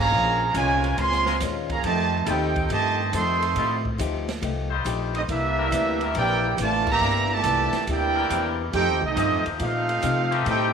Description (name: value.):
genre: jazz, big band swing.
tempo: 139 BPM.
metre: 4/4.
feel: swing 68% on 8ths.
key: F major.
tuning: A4 = 441 Hz.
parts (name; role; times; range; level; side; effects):
bright trumpet section; melody; 0.0-10.7 s; C4 to C6; -24 LUFS; right 3 dB; none.
clear trombone section; second line; 0.0-10.7 s; Bb2 to G4; -29 LUFS; right 8 dB; none.
upright bass; bass; 0.0-10.7 s; G1 to C3; -28 LUFS; left 1 dB; none.
picked old ladder-braced acoustic guitar; accompaniment; 0.1-10.7 s; A2 to G4; -31 LUFS; left 12 dB; none.
muted trombone section; sustained chords; 0.5-10.7 s; Eb3 to C5; -32 LUFS; left 9 dB; none.
open jazz drum kit; drums; 0.5-10.6 s; crash cymbal, hi-hat, kick drum, ride cymbal, snare drum; -34 LUFS; right 3 dB; none.
room: moderate echo chamber reverb, RT60 1.6 s, studio ambience.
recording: 1960s-style stereo with parts hard left and right.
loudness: -21 LUFS.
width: side -6 dB against mid.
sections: 0.0-10.7 A section.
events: band accent 6.8.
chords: 0.1 Bbm7; 1.8 F9; 5.3 C9; 8.7 F9.